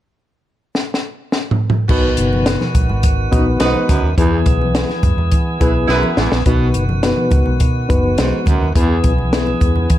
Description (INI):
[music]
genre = uptempo 1960s-style soul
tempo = 105 BPM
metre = 4/4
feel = straight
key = B major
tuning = A4 = 442 Hz
[part]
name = compact cocktail drum kit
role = drums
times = 0.8-10.0 s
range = crash cymbal, hi-hat, kick drum, snare drum, toms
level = -16 LUFS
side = equal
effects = none
[part]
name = reed electric piano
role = accompaniment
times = 1.9-9.9 s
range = B2 to B4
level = -19 LUFS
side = left 3 dB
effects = overdrive, medium tremolo
[part]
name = tonewheel organ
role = sustained chords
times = 1.9-10.0 s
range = D#3 to G#4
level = -24 LUFS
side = right 1 dB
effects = fast rotary speaker, overdrive
[part]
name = warm baritone saxophone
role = riff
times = 1.9-9.0 s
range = E2 to B2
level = -23 LUFS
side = right 5 dB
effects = none
[part]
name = vintage muted fingered electric bass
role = bass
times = 1.9-10.0 s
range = F#1 to E3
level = -18 LUFS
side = equal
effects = none
[part]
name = congas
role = percussion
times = 1.9-9.9 s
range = none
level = -28 LUFS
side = right 2 dB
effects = none
[part]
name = warm horn section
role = second line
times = 3.3-6.3 s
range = D#4 to B4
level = -22 LUFS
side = right 3 dB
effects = none
[sound]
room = small room ambience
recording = none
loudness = -13 LUFS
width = side -13 dB against mid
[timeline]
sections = 0.0-1.9 A section; 1.9-6.5 B section; 6.5-10.0 C section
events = drum fill 0.8-1.9, 5.9-6.5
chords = 0.0 N.C.; 1.9 B; 4.2 E; 6.5 B; 8.8 E